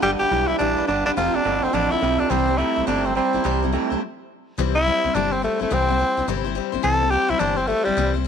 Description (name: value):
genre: rockabilly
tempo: 212 BPM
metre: 4/4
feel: swing 62% on 8ths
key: C major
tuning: A4 = 440 Hz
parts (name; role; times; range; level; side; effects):
- growling tenor saxophone; melody; 0.0-8.1 s; G3 to A4; -21 LUFS; equal; none
- picked steel-string acoustic guitar; accompaniment; 0.0-8.3 s; C3 to C5; -26 LUFS; left 14 dB; none
- electric guitar through a small old amp; riff; 0.0-4.0 s; F2 to A3; -24 LUFS; right 13 dB; vibrato effect
- metallic FM bass; bass; 0.0-8.3 s; F1 to C2; -27 LUFS; equal; none
room: light reverb, small room ambience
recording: 1960s-style stereo with parts hard left and right, lossy compression artefacts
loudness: -18 LUFS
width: side -7 dB against mid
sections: 0.0-4.6 A section; 4.6-8.3 B section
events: stop 4.0-4.6; tenor saxophone solo 4.6-8.3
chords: 0.0 G; 1.2 F; 2.3 C